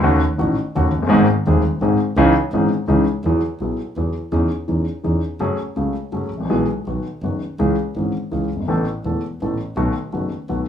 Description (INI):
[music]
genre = tango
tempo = 166 BPM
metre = 3/4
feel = rubato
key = C# minor, E major from 3.2 s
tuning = A4 = 440 Hz
[part]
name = warm concert grand piano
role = accompaniment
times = 0.0-10.6 s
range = D#1 to A4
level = -18 LUFS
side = left 1 dB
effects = none
[part]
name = dark double bass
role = bass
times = 0.0-10.6 s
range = E1 to E2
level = -23 LUFS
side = right 1 dB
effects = none
[sound]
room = moderate club reverb, RT60 0.6 s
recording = none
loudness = -17 LUFS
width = side -9 dB against mid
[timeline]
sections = 0.0-3.2 A section; 3.2-10.7 B section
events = none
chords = 0.0 D#m7b5; 1.1 G#; 2.2 C#madd9; 3.2 Eadd9; 4.3 C#madd9/E; 5.4 F#madd9; 6.5 E/B; 6.9 B; 7.6 C#m; 8.7 Asus2; 9.8 B7